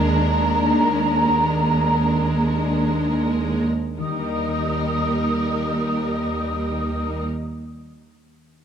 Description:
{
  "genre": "classical, slow romantic movement for symphony orchestra",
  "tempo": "25-34 BPM (dotted quarters)",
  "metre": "12/8",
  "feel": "rubato",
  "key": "Eb major",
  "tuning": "A4 = 441 Hz",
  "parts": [
    { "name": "rich symphonic violin section", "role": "melody", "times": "0.0-7.2 s", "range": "Bb4", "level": "-33 LUFS", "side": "left 2 dB", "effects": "none" },
    { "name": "large flute ensemble", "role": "second line", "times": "0.0-7.2 s", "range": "Bb5 to Eb6", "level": "-24 LUFS", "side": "right 1 dB", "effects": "none" },
    { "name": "warm symphonic violin section", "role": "second line", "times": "0.0-7.2 s", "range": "D4 to Eb4", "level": "-31 LUFS", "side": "left 2 dB", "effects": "none" },
    { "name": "clear symphonic viola section", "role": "accompaniment", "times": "0.0-7.2 s", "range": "G3 to Ab3", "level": "-30 LUFS", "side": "right 2 dB", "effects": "none" },
    { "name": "concert harp", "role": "arpeggios", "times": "0.0-7.9 s", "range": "Eb3 to Eb5", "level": "-29 LUFS", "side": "left 7 dB", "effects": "none" },
    { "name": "rich symphonic cello section", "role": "bass", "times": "0.0-7.2 s", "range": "Eb2", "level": "-25 LUFS", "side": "right 2 dB", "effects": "none" },
    { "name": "warm symphonic double bass section", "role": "bass", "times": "0.0-7.2 s", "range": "Eb2", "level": "-25 LUFS", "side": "right 2 dB", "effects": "none" }
  ],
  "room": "light reverb",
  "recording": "close, detailed microphones",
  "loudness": "-19 LUFS",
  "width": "side -8 dB against mid",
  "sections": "0.0-4.0 A section; 4.0-8.6 B section",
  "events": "slowing down 0.0-4.0",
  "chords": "0.0 Bb7/Eb; 4.0 Eb"
}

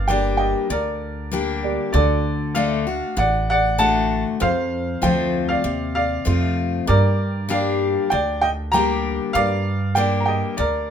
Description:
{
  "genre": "honky-tonk and classic country",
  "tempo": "97 BPM",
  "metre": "4/4",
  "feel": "straight",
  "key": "G minor",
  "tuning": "A4 = 440 Hz",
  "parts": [
    { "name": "warm upright piano", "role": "melody", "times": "0.0-10.9 s", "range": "A4 to Bb5", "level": "-21 LUFS", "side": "equal", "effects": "none" },
    { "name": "dark upright piano", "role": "accompaniment", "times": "0.0-10.9 s", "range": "Bb3 to D6", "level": "-31 LUFS", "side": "right 6 dB", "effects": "none" },
    { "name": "picked steel-string acoustic guitar", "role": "accompaniment", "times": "0.0-10.9 s", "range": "F2 to G4", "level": "-24 LUFS", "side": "left 5 dB", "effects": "none" },
    { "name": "upright bass", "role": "bass", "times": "0.0-10.9 s", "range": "G1 to G2", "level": "-24 LUFS", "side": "right 1 dB", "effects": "none" }
  ],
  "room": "moderate studio reverb, RT60 0.6 s",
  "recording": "minimal, uncompressed stereo recording",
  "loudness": "-18 LUFS",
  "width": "side -8 dB against mid",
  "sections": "0.0-10.9 A section",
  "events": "none",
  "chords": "0.0 Gm; 1.9 D; 4.4 F; 6.9 Gm"
}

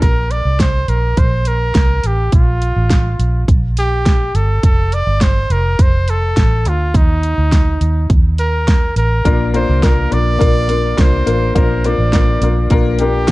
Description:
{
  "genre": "piano-driven pop",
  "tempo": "104 BPM",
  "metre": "4/4",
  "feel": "straight",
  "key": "Bb major",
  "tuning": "A4 = 444 Hz",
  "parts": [
    { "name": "clear trumpet", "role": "melody", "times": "0.0-13.3 s", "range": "Eb4 to D5", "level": "-20 LUFS", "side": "right 1 dB", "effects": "none" },
    { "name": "bright upright piano", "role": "accompaniment", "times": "0.0, 9.2-13.3 s", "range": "Bb2 to C5", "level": "-18 LUFS", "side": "left 4 dB", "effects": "none" },
    { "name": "vintage muted fingered electric bass", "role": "bass", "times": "0.0-13.3 s", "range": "F1 to Eb2", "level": "-16 LUFS", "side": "equal", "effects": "none" },
    { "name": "pop drum kit", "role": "drums", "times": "0.0-13.3 s", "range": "hi-hat, kick drum, snare drum", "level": "-14 LUFS", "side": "equal", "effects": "none" }
  ],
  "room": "light reverb",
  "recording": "dark, warm production",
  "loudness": "-12 LUFS",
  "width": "side -19 dB against mid",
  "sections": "0.0-13.3 A section",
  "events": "none",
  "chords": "0.0 Bb5; 4.6 F; 6.9 Eb5; 9.2 Bb"
}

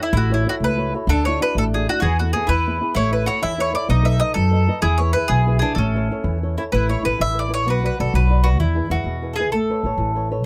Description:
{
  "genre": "italian folk, Italian serenade",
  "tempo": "128 BPM (dotted quarters)",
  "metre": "6/8",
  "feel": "straight",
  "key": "A major",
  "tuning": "A4 = 440 Hz",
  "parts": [
    { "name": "bowl-back mandolin", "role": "melody", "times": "0.0-8.5 s", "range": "E4 to E5", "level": "-24 LUFS", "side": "equal", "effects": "none" },
    { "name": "mandolin", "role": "second line", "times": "0.0-10.3 s", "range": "C#4 to A4", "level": "-29 LUFS", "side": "equal", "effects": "none" },
    { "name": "flamenco guitar", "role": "accompaniment", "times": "0.0-10.4 s", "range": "B2 to D#5", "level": "-28 LUFS", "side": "equal", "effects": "none" },
    { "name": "upright bass", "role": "bass", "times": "0.1-10.4 s", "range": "A1 to F#2", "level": "-22 LUFS", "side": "equal", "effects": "none" }
  ],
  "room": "little or no reverb",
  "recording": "none",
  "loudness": "-20 LUFS",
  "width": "mono",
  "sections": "0.0-6.7 A section; 6.7-10.5 B section",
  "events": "none",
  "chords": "0.1 F#m/A; 1.1 Dadd9; 2.0 Esus4; 2.5 E; 3.0 A; 3.9 B7; 4.8 E; 5.8 A; 6.7 Asus2; 7.7 Bm; 8.6 E; 9.5 Aadd9"
}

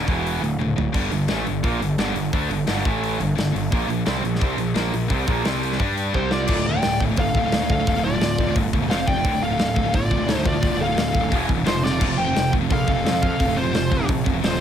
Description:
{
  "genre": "heavy metal",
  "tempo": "174 BPM",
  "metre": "4/4",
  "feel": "straight",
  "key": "D minor",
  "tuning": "A4 = 440 Hz",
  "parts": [
    { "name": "distorted electric guitar", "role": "riff", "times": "0.0-14.6 s", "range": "D2 to G4", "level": "-26 LUFS", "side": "right 9 dB", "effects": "distortion" },
    { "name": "high-gain distorted guitar", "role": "riff", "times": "0.0-14.6 s", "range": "D2 to G4", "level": "-26 LUFS", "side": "left 11 dB", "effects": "distortion" },
    { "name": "fuzz picked electric bass", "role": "bass", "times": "0.0-14.6 s", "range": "D1 to G2", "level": "-26 LUFS", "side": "equal", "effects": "overdrive" },
    { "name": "tight metal drum kit", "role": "drums", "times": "0.1-14.6 s", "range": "crash cymbal, hi-hat, kick drum, snare drum, splash cymbal, toms", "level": "-25 LUFS", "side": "equal", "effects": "none" },
    { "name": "high-gain lead guitar", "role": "melody", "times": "6.2-14.6 s", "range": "C5 to G5", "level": "-25 LUFS", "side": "left 1 dB", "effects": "distortion" },
    { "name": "high-gain lead guitar", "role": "second line", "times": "6.2-14.6 s", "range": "F4 to D5", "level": "-30 LUFS", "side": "equal", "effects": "distortion" }
  ],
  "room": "light reverb",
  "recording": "none",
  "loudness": "-19 LUFS",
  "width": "side -9 dB against mid",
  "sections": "0.0-6.5 A section; 6.5-14.6 B section",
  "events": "drum fill 0.6-0.9, 6.1-6.5, 11.8",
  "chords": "0.1 E5; 0.4 D5; 0.9 G5; 2.8 A5; 3.2 G5; 3.7 Bb5; 5.4 C5; 5.8 G5; 6.1 C5; 6.5 Dm; 8.9 F5; 9.2 Dm; 11.3 E5; 11.7 F5; 12.0 F"
}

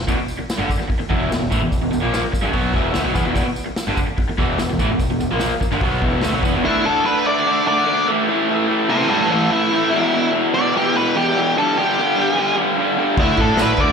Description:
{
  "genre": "garage rock duo or trio",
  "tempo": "147 BPM",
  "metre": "4/4",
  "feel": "straight",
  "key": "unclear",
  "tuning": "A4 = 439 Hz",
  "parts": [
    { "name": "growling picked electric bass", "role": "bass", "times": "0.0-6.6, 13.2-13.9 s", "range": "E1 to A2", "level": "-24 LUFS", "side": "equal", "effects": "overdrive" },
    { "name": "raw garage guitar", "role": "riff", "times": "0.1-13.9 s", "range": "E2 to D4", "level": "-18 LUFS", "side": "equal", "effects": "overdrive, slapback echo" },
    { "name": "vintage drum kit", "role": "drums", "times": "0.1-6.5, 13.2-13.9 s", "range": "crash cymbal, hi-hat, kick drum, snare drum", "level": "-23 LUFS", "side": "equal", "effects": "none" },
    { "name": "tambourine", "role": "percussion", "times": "0.1-6.5, 13.6-13.7 s", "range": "none", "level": "-38 LUFS", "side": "right 2 dB", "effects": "none" },
    { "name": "octave-fuzz lead guitar", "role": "melody", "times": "6.7-13.9 s", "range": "C#4 to E5", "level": "-19 LUFS", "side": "left 1 dB", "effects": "distortion, slapback echo" }
  ],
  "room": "light reverb",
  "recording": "live gig heard through the venue's PA, recital hall reverb",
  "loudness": "-16 LUFS",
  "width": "side -6 dB against mid",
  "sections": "0.0-6.6 A section; 6.6-13.9 B section",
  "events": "none",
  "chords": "0.0 E5; 6.6 D5; 8.1 A5; 9.9 E5; 11.5 G5; 13.2 D5"
}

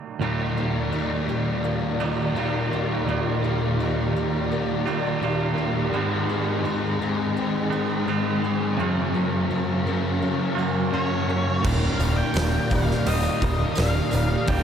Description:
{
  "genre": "rock, shoegaze and dream pop",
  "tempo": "84 BPM",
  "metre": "4/4",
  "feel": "straight",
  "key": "Eb major",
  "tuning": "A4 = 440 Hz",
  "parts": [
    { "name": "icy glass pad", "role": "sustained chords", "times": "1.4-14.6 s", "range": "Eb2 to F5", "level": "-30 LUFS", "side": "right 1 dB", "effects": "chorus, built-in reverb" },
    { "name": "picked twelve-string acoustic guitar", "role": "arpeggios", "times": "0.2-14.6 s", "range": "Eb2 to Gb4", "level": "-32 LUFS", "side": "left 3 dB", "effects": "ensemble chorus, analog delay" },
    { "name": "thick fuzz guitar", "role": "riff", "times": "0.2-14.6 s", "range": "Eb2 to Ab3", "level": "-26 LUFS", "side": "left 5 dB", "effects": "distortion, ensemble chorus" },
    { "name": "twangy electric guitar", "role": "riff", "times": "0.2-14.6 s", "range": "Eb2 to Gb4", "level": "-27 LUFS", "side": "right 7 dB", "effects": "reverse reverb" },
    { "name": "octave-fuzz lead guitar", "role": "melody", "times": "10.9-14.6 s", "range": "Db5 to G5", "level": "-30 LUFS", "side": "left 2 dB", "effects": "distortion, analog delay" },
    { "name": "huge arena drum kit", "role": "drums", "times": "11.6-14.6 s", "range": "crash cymbal, hi-hat, kick drum, snare drum", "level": "-28 LUFS", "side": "equal", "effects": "none" },
    { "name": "tambourine", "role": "percussion", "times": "11.6-14.6 s", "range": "none", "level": "-43 LUFS", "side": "right 10 dB", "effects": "none" },
    { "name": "growling picked electric bass", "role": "bass", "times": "11.7-14.6 s", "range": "Eb1", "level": "-24 LUFS", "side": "equal", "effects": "overdrive" }
  ],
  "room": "wet huge ambient reverb, RT60 7.5 s",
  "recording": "dreamy mix soaked in reverb",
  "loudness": "-21 LUFS",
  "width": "side -8 dB against mid",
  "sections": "0.2-11.6 A section; 11.6-14.6 B section",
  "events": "none",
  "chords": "0.2 Ebadd9; 5.9 Ab; 8.8 Gb; 11.6 Ebadd9"
}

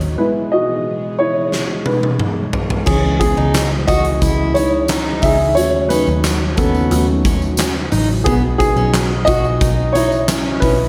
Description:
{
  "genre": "piano-driven pop",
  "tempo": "89 BPM",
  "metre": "4/4",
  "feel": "straight",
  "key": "C# minor",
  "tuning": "A4 = 438 Hz",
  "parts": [
    { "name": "dark upright piano", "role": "accompaniment", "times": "0.0-10.9 s", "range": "E3 to E5", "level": "-20 LUFS", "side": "equal", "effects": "slapback echo" },
    { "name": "airy breathy pad", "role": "sustained chords", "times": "0.0-10.9 s", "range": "A2 to D#5", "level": "-28 LUFS", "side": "equal", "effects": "chorus" },
    { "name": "vintage muted picked electric bass", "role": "bass", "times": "0.0-10.9 s", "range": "A1 to D#2", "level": "-22 LUFS", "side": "equal", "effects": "none" },
    { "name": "huge arena drum kit", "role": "drums", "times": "0.0-10.8 s", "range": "crash cymbal, handclaps, hi-hat, kick drum, snare drum, toms", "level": "-22 LUFS", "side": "equal", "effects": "none" },
    { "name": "picked steel-string acoustic guitar", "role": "riff", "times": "2.9-10.8 s", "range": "B3 to F#4", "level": "-25 LUFS", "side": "equal", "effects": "none" },
    { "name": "tambourine", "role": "percussion", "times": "2.9-10.8 s", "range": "none", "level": "-35 LUFS", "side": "equal", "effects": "none" }
  ],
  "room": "wet scoring stage reverb, RT60 2.0 s",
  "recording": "big arena sound",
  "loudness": "-16 LUFS",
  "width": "mono",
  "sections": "0.0-2.9 A section; 2.9-10.9 B section",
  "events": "upright piano solo 0.0-2.9, 2.9-10.9; drum fill 1.5-2.9",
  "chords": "0.2 E; 2.9 C#madd9; 5.6 D#m7b5; 8.3 B"
}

